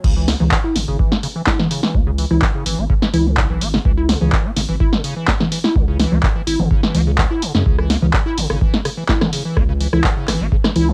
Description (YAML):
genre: acid house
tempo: 126 BPM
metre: 4/4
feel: straight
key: C# minor pentatonic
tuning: A4 = 440 Hz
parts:
  - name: liquid acid bass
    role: riff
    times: 0.0-10.9 s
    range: C#3 to E4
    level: -25 LUFS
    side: equal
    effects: chorus, overdrive, sidechain pumping, cassette tape, analog delay
  - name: saturated sub bass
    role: bass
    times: 0.0-10.9 s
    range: G#1 to F#2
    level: -22 LUFS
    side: equal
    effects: sidechain pumping
  - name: electronic kick drum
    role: drums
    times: 0.0-10.6 s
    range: none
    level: -20 LUFS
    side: equal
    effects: cassette tape
  - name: punchy analog drum machine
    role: drums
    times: 0.0-10.9 s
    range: congas, crash cymbal, handclaps, hi-hat, rim click, snare drum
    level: -21 LUFS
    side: equal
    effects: cassette tape
room: light reverb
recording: home recording on cassette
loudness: -17 LUFS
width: mono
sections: 0.0-10.9 A section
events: drop 0.0-10.9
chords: 0.0 C#5